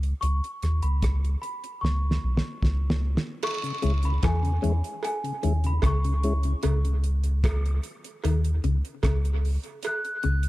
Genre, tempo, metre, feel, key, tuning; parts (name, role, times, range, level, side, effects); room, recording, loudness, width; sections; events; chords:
dub reggae; 75 BPM; 4/4; straight; C# minor; A4 = 440 Hz
soft dub sub bass; bass; 0.0-10.5 s; B1 to E2; -24 LUFS; equal
damped 70s drum kit; drums; 0.0-10.5 s; crash cymbal, hi-hat, kick drum, rim click, snare drum; -29 LUFS; equal
celesta; melody; 0.2-10.4 s; G#5 to F#6; -33 LUFS; left 1 dB; dub echo
cowbell and jawbone-type rattle; percussion; 3.4-10.0 s; -35 LUFS; right 4 dB; high-pass filter on perc, dub echo
mellow tonewheel organ; accompaniment; 3.6-6.9 s; C#3 to E4; -33 LUFS; left 3 dB; slow rotary speaker, high-pass filter
semi-hollow electric guitar; riff; 3.8-10.5 s; C#3 to E3; -32 LUFS; left 6 dB; wide subtle chorus, dub echo
light reverb, small room ambience; dark, warm production; -23 LUFS; side -17 dB against mid
0.0-3.4 A section; 3.4-10.5 B section
break 0.0; drum fill 1.8-3.4
0.2 Bsus2; 3.4 C#m; 6.6 C#sus2; 9.8 N.C.